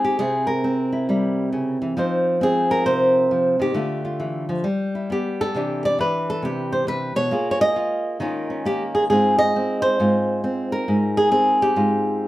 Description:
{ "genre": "solo jazz", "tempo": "135 BPM", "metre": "4/4", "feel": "swing 65% on 8ths", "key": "Ab major", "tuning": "A4 = 441 Hz", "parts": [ { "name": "flamenco guitar", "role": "solo", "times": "0.0-12.3 s", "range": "Ab2 to Eb5", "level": "-18 LUFS", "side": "equal", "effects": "none" } ], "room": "light reverb", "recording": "band playing live in one room", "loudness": "-18 LUFS", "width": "side -16 dB against mid", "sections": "0.0-12.3 A section", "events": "none", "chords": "0.2 C7b9; 2.0 Fm7; 3.8 Dmadd9; 4.6 G6; 5.5 Cmaj9; 7.3 Bb7sus4; 8.2 Ebsus2; 9.1 Ab69", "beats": "| 0.19 0.64 1.08 1.53 | 1.98 2.42 2.87 3.31 | 3.75 4.20 4.64 5.09 | 5.53 5.98 6.42 6.87 | 7.31 7.76 8.20 8.64 | 9.09 9.53 9.98 10.42 | 10.87 11.31 11.75 12.20" }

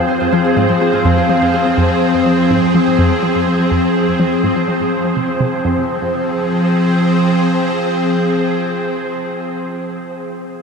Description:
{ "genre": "ambient, sequencer-driven space music", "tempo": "124 BPM", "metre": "4/4", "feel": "straight", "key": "F minor", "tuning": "A4 = 440 Hz", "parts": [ { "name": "evolving wavetable pad", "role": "sustained chords", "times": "0.0-9.9 s", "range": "F3 to C5", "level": "-14 LUFS", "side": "equal", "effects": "ensemble chorus, built-in reverb" }, { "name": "Celtic harp", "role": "arpeggios", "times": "0.0-5.3 s", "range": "F3 to Ab4", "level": "-22 LUFS", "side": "left 2 dB", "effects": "auto-pan, tape echo" }, { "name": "wind-like tuned noise texture", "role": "texture", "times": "0.0-5.7 s", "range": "C5", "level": "-27 LUFS", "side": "right 3 dB", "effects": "built-in reverb" }, { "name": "analog pluck", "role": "riff", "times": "0.3-5.9 s", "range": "F2 to F3", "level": "-20 LUFS", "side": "equal", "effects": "chorus, tape echo" } ], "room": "wet huge ambient reverb, RT60 8.3 s", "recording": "dark, warm production", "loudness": "-13 LUFS", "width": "side -5 dB against mid", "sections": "0.0-5.6 A section; 5.6-9.5 B section", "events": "filter sweep on synth arpeggio sound 0.0-5.6", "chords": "0.0 Fm", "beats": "0.32 0.81 1.29 | 1.77 2.26 2.74 3.23 | 3.71 4.19 4.68 5.16 | 5.64 6.13 6.61 7.10 | 7.58 8.06 8.55 9.03" }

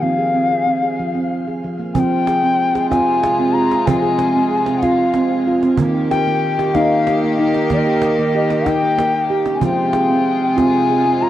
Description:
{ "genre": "world meditative, meditative tuned percussion", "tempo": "63 BPM (dotted quarters)", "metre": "6/8", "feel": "straight", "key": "F minor", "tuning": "A4 = 440 Hz", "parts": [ { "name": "bright reedy bansuri", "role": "melody", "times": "0.0-11.3 s", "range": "Eb5 to Bb5", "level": "-19 LUFS", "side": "left 4 dB", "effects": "cassette tape, shimmer reverb, tape echo" }, { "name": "handpan", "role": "arpeggios", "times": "0.0-11.3 s", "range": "Eb3 to Ab4", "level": "-17 LUFS", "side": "right 2 dB", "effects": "cassette tape, shimmer reverb, tape echo" }, { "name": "rich chamber string section", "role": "sustained chords", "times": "1.9-11.3 s", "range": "C3 to G4", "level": "-21 LUFS", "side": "right 1 dB", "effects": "cassette tape, shimmer reverb" }, { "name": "cajon", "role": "percussion", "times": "1.9-10.7 s", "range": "none", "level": "-24 LUFS", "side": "right 5 dB", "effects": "none" } ], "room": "wet booth ambience, RT60 0.3 s", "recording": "home recording on cassette", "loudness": "-14 LUFS", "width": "side -12 dB against mid", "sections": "0.0-2.0 A section; 2.0-11.3 B section", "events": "none", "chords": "0.0 Fm; 5.8 Eb; 9.6 Fm", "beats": "| 0.03 1.00 | 1.96 2.92 | 3.88 4.83 | 5.79 6.75 | 7.70 8.66 | 9.61 10.57" }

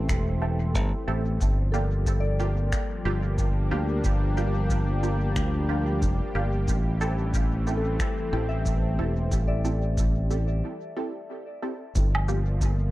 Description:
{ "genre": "ambient dub", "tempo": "91 BPM", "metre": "4/4", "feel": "swing 59% on 16ths", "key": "G dorian", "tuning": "A4 = 440 Hz", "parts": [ { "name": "warm analog pad", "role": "sustained chords", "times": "0.0-12.9 s", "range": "E3 to G4", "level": "-32 LUFS", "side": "left 1 dB", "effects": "chorus" }, { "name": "modern bright fingered electric bass", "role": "bass", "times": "0.0-12.9 s", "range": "E1 to D2", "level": "-25 LUFS", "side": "equal", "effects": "none" }, { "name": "electronic finger snaps, shaker and woodblock", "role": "drums", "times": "0.1-12.8 s", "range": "none", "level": "-36 LUFS", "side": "right 1 dB", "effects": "studio reverb, dub echo" }, { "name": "electronic kick drum", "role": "drums", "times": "0.1-12.8 s", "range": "none", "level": "-28 LUFS", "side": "equal", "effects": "overdrive, studio reverb" }, { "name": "filtered dub chord stab", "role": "stabs", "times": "0.4-12.4 s", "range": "Bb3 to A4", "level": "-34 LUFS", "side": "right 2 dB", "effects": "phaser, analog chorus, dub echo" }, { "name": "soft synth bell", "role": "arpeggios", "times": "1.7-12.0 s", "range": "A4 to E5", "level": "-37 LUFS", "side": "left 2 dB", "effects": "chorus, dub echo" } ], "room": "light reverb, digital ambience", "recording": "dark, warm production", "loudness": "-23 LUFS", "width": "side -17 dB against mid", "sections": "0.0-12.0 A section", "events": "break 10.6-12.0", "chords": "0.0 Am7; 1.4 Gm7; 6.7 Am7; 12.0 Gm7", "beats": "0.09 0.75 | 1.41 2.06 2.73 3.38 | 4.04 4.70 5.36 6.02 | 6.68 7.34 8.00 8.66 | 9.32 9.98 10.64 11.30 | 11.96 12.62" }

